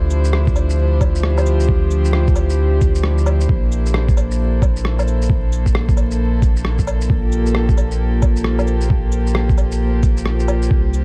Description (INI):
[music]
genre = future garage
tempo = 133 BPM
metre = 4/4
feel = swing 63% on 16ths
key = G dorian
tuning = A4 = 439 Hz
[part]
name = rich chamber string section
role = sustained chords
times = 0.0-11.0 s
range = F3 to C5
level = -25 LUFS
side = equal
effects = sidechain pumping
[part]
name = warm sub bass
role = bass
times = 0.0-11.0 s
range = Bb1 to D2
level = -20 LUFS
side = equal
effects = tube saturation, sidechain pumping
[part]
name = electronic cabasa, shaker, rim click and woodblock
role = drums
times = 0.1-11.0 s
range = none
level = -28 LUFS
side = equal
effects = overdrive
[part]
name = electronic kick drum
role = drums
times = 0.5-10.8 s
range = none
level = -19 LUFS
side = equal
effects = overdrive
[sound]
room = digital ambience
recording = dark, warm production, vinyl crackle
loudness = -17 LUFS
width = mono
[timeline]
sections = 0.0-11.0 A section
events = none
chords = 0.0 Dm11; 3.5 Bbmaj9#11; 7.1 Gm11/Bb